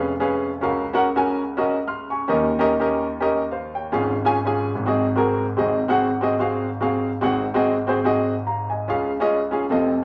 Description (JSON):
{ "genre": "gospel", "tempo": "145 BPM", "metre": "4/4", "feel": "swing 57% on 8ths", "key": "unclear", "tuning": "A4 = 441 Hz", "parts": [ { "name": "clear grand piano", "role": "solo", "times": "0.0-10.0 s", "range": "F1 to F6", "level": "-22 LUFS", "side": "equal", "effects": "none" } ], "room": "moderate large studio reverb, RT60 0.8 s", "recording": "lossy compression artefacts", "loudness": "-22 LUFS", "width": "mono", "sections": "0.0-5.6 A section; 5.6-8.9 B section; 8.9-10.0 C section", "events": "none", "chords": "0.0 Db7/F; 0.6 Gbmaj7/Db; 2.3 Eb7; 3.9 Db/Ab; 4.7 Ab7; 8.9 Db", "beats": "0.21 | 0.62 1.03 1.45 1.86 | 2.27 2.68 3.10 3.51 | 3.92 4.33 4.75 5.16 | 5.57 5.98 6.40 6.81 | 7.22 7.64 8.05 8.46 | 8.88 9.29 9.71" }